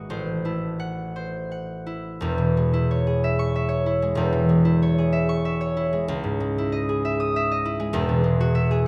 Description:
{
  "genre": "classical, solo harp piece",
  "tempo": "56-68 BPM (dotted quarters)",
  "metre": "6/8",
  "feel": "rubato",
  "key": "E major",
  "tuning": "A4 = 440 Hz",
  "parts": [
    { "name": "concert harp", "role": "solo", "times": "0.0-8.9 s", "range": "E1 to D#6", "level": "-23 LUFS", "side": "equal", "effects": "none" }
  ],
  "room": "wet recital hall reverb, RT60 1.6 s",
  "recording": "none",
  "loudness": "-23 LUFS",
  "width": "mono",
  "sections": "0.0-2.2 A section; 2.2-8.9 B section",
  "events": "none",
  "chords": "0.1 Am6; 2.2 E6; 6.1 C#madd9; 7.9 Eadd9"
}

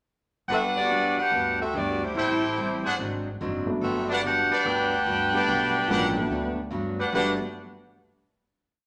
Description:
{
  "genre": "jazz, big band swing",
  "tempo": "144 BPM",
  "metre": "4/4",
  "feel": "swing 64% on 8ths",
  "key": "G major",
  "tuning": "A4 = 437 Hz",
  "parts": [
    { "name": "bright saxophone section", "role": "melody", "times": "0.5-6.7 s", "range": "A3 to G5", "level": "-28 LUFS", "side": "equal", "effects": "none" },
    { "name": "picked steel-string acoustic guitar", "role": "accompaniment", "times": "0.5-7.4 s", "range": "G2 to E4", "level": "-34 LUFS", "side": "equal", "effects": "none" },
    { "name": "bright trumpet section", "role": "stabs", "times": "0.5-7.3 s", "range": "D4 to G5", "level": "-30 LUFS", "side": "equal", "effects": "none" },
    { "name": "upright bass", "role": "bass", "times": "0.5-7.4 s", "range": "Gb1 to D2", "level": "-40 LUFS", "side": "equal", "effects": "none" },
    { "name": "dark concert grand piano", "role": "accompaniment", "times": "3.7-7.4 s", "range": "F3 to F#4", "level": "-32 LUFS", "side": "equal", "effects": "none" }
  ],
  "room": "wet large studio reverb, RT60 1.1 s",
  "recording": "none",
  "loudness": "-25 LUFS",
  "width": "mono",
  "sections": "0.5-7.1 A section; 7.1-8.8 final chord",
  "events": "none",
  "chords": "0.5 Gmaj7; 2.1 Am7; 3.0 Ab7#11; 3.8 Gmaj7"
}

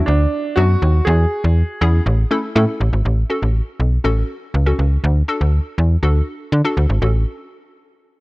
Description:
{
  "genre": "pop",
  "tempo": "121 BPM",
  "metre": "4/4",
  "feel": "straight",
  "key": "A major",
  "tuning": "A4 = 440 Hz",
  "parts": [
    { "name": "warm grand piano", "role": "melody", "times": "0.0-2.0 s", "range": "D4 to G#4", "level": "-21 LUFS", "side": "right 2 dB", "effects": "none" },
    { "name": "hollow square pluck", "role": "accompaniment", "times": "0.0-7.3 s", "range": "F#3 to A4", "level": "-23 LUFS", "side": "left 1 dB", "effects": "chorus" },
    { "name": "slap-like FM bass", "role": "bass", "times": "0.1-7.2 s", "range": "G#1 to D3", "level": "-14 LUFS", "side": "equal", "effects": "none" }
  ],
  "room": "small room reverb",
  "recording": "dry, gritty hardware recording, cassette tape",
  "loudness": "-15 LUFS",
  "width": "side -21 dB against mid",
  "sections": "0.0-3.1 A section; 3.1-7.0 B section; 7.0-8.2 C section",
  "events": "none",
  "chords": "0.0 Bm; 1.1 E6; 2.1 A; 3.1 A6; 5.0 D; 7.0 A6"
}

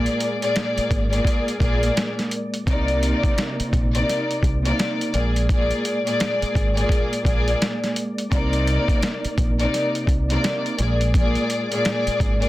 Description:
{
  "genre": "hip hop, boom-bap hip-hop",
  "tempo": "85 BPM",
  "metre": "4/4",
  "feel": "swing 61% on 16ths",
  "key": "unclear",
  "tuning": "A4 = 440 Hz",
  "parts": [
    { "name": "warm studio string section", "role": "accompaniment", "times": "0.0-12.5 s", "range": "Bb2 to D5", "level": "-23 LUFS", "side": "left 1 dB", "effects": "cassette tape, high-pass filter, low-pass filter" },
    { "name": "mellow tonewheel organ", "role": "sustained chords", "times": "0.0-12.5 s", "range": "C3 to D5", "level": "-31 LUFS", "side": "right 2 dB", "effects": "chorus vibrato, slow rotary speaker, high-pass filter, low-pass filter" },
    { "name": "deep dub fingered electric bass", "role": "bass", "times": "0.0-12.5 s", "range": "Ab1 to C2", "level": "-22 LUFS", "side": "equal", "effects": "none" },
    { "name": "boom bap sampler-style drum kit", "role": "drums", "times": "0.1-12.5 s", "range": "hi-hat, kick drum, snare drum", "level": "-23 LUFS", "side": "equal", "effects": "none" }
  ],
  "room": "light reverb",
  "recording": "dense, heavily limited modern master",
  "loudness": "-19 LUFS",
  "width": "side -16 dB against mid",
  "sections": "0.0-12.5 A section",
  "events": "none",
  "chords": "0.0 Bb7; 2.7 Cm9; 5.1 Bb7; 8.3 Cm9; 10.8 Bb7"
}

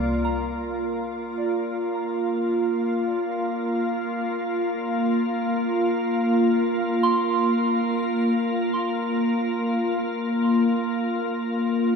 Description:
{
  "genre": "ambient",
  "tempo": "free time",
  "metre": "none",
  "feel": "none",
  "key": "Bb major",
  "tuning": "A4 = 440 Hz",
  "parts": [
    { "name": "soft synth bell", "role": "arpeggios", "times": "0.0-9.8 s", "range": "D5 to C6", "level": "-31 LUFS", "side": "right 3 dB", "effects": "chorus, phaser, tape echo, shimmer reverb" },
    { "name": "organ-like drone", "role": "drone", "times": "0.0-12.0 s", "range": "Bb3 to F4", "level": "-22 LUFS", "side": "equal", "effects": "ensemble chorus, built-in reverb" }
  ],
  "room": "wet cathedral reverb, RT60 5.7 s",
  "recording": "in a vast, echoing space",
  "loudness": "-22 LUFS",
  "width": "side -5 dB against mid",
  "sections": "0.2-12.0 A section",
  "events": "fade-in on synth bell 0.2-12.0",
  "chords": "0.2 Bb; 4.8 Bbsus2"
}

